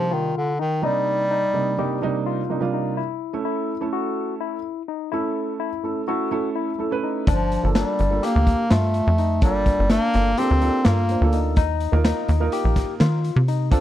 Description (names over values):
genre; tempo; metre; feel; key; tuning
progressive instrumental, band music in an uneven meter; 251 BPM (eighths); 9/8; straight; unclear; A4 = 439 Hz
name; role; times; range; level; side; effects
clear bass clarinet; melody; 0.0-2.3, 7.3-11.4 s; D3 to C4; -22 LUFS; equal; none
dark grand piano; accompaniment; 0.0-13.8 s; C3 to C5; -26 LUFS; right 6 dB; none
barky tine electric piano; arpeggios; 0.0-13.8 s; D4 to G4; -28 LUFS; left 16 dB; overdrive, auto-pan
tight sequencer bass; bass; 7.3-13.8 s; G1 to Eb3; -20 LUFS; equal; none
raw garage drum kit; drums; 7.3-13.8 s; hi-hat, kick drum, snare drum; -22 LUFS; equal; none
room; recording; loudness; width
little or no reverb; dry, close 1970s-style studio recording; -19 LUFS; side -12 dB against mid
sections
0.0-13.8 A section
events
none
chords
0.0 Cm7; 3.0 A; 7.3 Gm7; 11.6 Ebsus2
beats
0.12 0.36 0.59 | 0.83 1.07 1.31 1.55 1.79 2.03 2.27 2.50 2.74 | 2.98 3.22 3.46 3.70 3.94 4.18 4.42 4.65 4.89 | 5.13 5.37 5.61 5.85 6.09 6.33 6.56 6.80 7.04 | 7.28 7.52 7.76 8.00 8.23 8.47 8.71 8.95 9.19 | 9.43 9.67 9.90 10.14 10.38 10.62 10.86 11.10 11.34 | 11.57 11.81 12.05 12.29 12.53 12.77 13.01 13.24 13.48 | 13.72